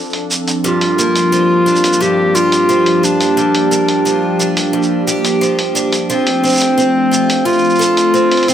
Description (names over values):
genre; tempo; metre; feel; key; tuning
folktronica; 88 BPM; 4/4; straight; unclear; A4 = 439 Hz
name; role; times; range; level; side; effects
warbly tape-like pad; sustained chords; 0.0-8.5 s; F3 to A4; -18 LUFS; left 2 dB; chorus, built-in reverb, phaser
electronic cabasa and hi-hat; drums; 0.0-8.5 s; none; -20 LUFS; right 1 dB; studio reverb
picked twelve-string acoustic guitar; arpeggios; 0.6-8.5 s; G2 to A4; -17 LUFS; right 3 dB; digital delay
warm clarinet; melody; 0.7-8.5 s; C4 to G4; -14 LUFS; left 1 dB; none
room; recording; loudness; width
light reverb; none; -11 LUFS; side -10 dB against mid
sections
0.0-8.5 A section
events
none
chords
0.0 Dm7; 0.6 Gm7; 6.1 F